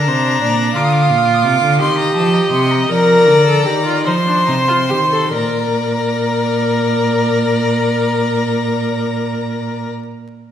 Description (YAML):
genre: classical, baroque-style fugue for string quartet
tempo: 44-60 BPM (dotted quarters)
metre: 6/8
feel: straight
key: Bb major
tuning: A4 = 440 Hz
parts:
  - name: clear violin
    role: melody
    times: 0.0-9.9 s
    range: A5 to Eb6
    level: -20 LUFS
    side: left 4 dB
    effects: none
  - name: clear violin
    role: second line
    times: 0.0-9.9 s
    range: C5 to F5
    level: -20 LUFS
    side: right 1 dB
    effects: none
  - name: rich viola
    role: accompaniment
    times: 0.0-9.9 s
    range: D4 to Bb4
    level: -17 LUFS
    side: left 1 dB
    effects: none
  - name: rich cello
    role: bass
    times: 0.0-9.9 s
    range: Bb2 to F3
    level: -18 LUFS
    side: right 2 dB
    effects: none
room: wet recital hall reverb, RT60 1.7 s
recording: recorded in a church or concert hall, vinyl crackle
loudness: -12 LUFS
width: side -9 dB against mid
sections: 0.0-5.4 A section; 5.4-10.5 B section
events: slowing down 0.0-5.4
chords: 0.0 Bb; 1.8 Eb; 2.9 Bb; 4.1 F7; 5.4 Bb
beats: | 0.75 1.79 | 2.89 4.06 | 5.35 6.70 | 8.06 9.41